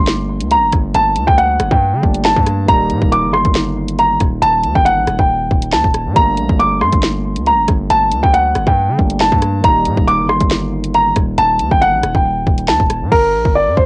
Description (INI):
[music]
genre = hip hop, drill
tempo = 138 BPM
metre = 4/4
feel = half-time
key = G harmonic minor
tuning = A4 = 440 Hz
[part]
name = dark baby grand piano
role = melody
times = 0.0-13.9 s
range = Bb4 to D6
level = -13 LUFS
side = equal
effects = cassette tape
[part]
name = barky tine electric piano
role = accompaniment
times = 0.0-13.1 s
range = Eb3 to Eb4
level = -21 LUFS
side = right 1 dB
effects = analog chorus, cassette tape
[part]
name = distorted 808-style bass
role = bass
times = 0.0-13.9 s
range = Eb1 to D3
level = -20 LUFS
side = equal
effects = distortion
[part]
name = drill drum kit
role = drums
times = 0.1-13.9 s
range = crash cymbal, hi-hat, kick drum, rim click, snare drum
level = -16 LUFS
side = equal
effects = cassette tape
[sound]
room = little or no reverb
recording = home recording on cassette, nothing above 10.4 kHz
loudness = -11 LUFS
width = side -24 dB against mid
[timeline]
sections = 0.0-13.1 A section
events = hi-hats muted 13.1-13.9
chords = 0.0 Gmadd9; 2.7 Eb; 6.2 Gmadd9; 9.6 Eb; 13.1 Gm